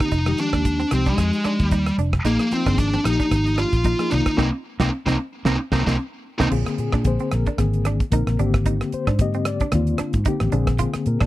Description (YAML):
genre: electric jazz fusion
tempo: 112 BPM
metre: 4/4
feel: swing 56% on 16ths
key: unclear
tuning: A4 = 436 Hz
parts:
  - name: bluesy overdriven lead guitar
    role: melody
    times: 0.0-6.5 s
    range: Ab3 to F4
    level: -23 LUFS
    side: equal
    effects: distortion
  - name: mellow reed electric piano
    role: accompaniment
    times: 0.0-11.3 s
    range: D3 to Eb5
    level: -26 LUFS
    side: left 5 dB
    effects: fast tremolo
  - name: vintage muted fingered electric bass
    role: bass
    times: 0.0-11.3 s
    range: F1 to Bb2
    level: -22 LUFS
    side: equal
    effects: none
  - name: damped 70s drum kit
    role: drums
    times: 0.0-11.3 s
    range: crash cymbal, hi-hat, kick drum, rim click, snare drum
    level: -24 LUFS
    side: equal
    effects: none
  - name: semi-hollow electric guitar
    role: stabs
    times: 0.1-11.3 s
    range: Bb3 to F4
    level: -29 LUFS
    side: right 8 dB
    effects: lush chorus
room: little or no reverb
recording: dry, close 1970s-style studio recording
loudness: -18 LUFS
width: side -16 dB against mid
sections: 0.0-6.5 A section; 6.5-11.3 B section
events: band accent 4.4-6.5; drum fill 6.0-6.5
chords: 0.1 Fm9; 2.3 Bb7sus4; 4.1 Cm9; 6.5 Bb9; 8.4 Abmaj9#11; 10.5 Bb9